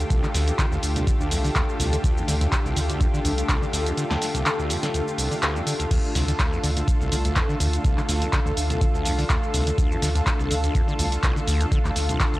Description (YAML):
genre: acid house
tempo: 124 BPM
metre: 4/4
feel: swing 54% on 16ths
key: D minor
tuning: A4 = 440 Hz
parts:
  - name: lush unison pad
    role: sustained chords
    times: 0.0-12.4 s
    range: D3 to A4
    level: -29 LUFS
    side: equal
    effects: chorus, sidechain pumping
  - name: warm sub bass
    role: bass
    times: 0.0-12.1 s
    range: C2 to D2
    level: -24 LUFS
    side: equal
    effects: tube saturation, sidechain pumping
  - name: punchy analog drum machine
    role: drums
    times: 0.0-12.4 s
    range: crash cymbal, handclaps, hi-hat, shaker, snare drum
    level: -28 LUFS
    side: equal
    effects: none
  - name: granular cloud pad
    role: texture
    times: 0.0-12.4 s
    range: D4 to A5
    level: -32 LUFS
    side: left 2 dB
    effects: built-in reverb, sidechain pumping
  - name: acid bass, saw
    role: riff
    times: 0.1-12.4 s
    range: C2 to D3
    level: -28 LUFS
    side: equal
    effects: overdrive, cassette tape, tape echo
  - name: electronic kick drum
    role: drums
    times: 0.1-12.3 s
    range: none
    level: -23 LUFS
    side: equal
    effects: none
room: light reverb, digital ambience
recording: dry, gritty hardware recording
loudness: -20 LUFS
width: side -17 dB against mid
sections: 0.0-12.4 A section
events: none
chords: 0.0 Dm